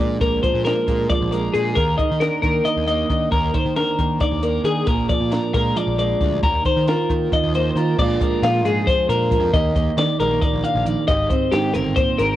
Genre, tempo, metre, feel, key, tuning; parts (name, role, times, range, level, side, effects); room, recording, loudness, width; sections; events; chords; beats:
math rock and midwest emo; 270 BPM (eighths); 7/8; straight; Eb major; A4 = 440 Hz
mellow electric guitar; accompaniment; 0.0-12.4 s; Eb2 to G4; -23 LUFS; right 5 dB; cassette tape
twelve-string electric guitar; arpeggios; 0.0-12.4 s; F4 to F5; -20 LUFS; left 3 dB; cassette tape, tape echo
fuzz picked electric bass; bass; 0.0-12.4 s; G1 to Eb3; -24 LUFS; equal; overdrive
compact cocktail drum kit; drums; 0.2-12.3 s; crash cymbal, hi-hat, kick drum, snare drum; -23 LUFS; equal; cassette tape
light reverb; home recording on cassette; -17 LUFS; side -13 dB against mid
0.0-8.0 A section; 8.0-12.4 B section
0.0 Bb7; 1.8 Eb5; 4.9 Bb7; 6.4 Ebsus2; 8.0 Bb7; 9.5 Ebmaj9; 11.1 Abmaj9
| 0.21 0.43 0.65 0.87 1.09 1.32 1.54 | 1.76 1.98 2.21 2.43 2.65 2.87 3.09 | 3.32 3.54 3.76 3.98 4.21 4.43 4.65 | 4.87 5.09 5.32 5.54 5.76 5.98 6.21 | 6.43 6.65 6.87 7.09 7.32 7.54 7.76 | 7.98 8.20 8.42 8.64 8.87 9.09 9.31 | 9.53 9.75 9.97 10.20 10.42 10.64 10.86 | 11.08 11.30 11.52 11.75 11.97 12.19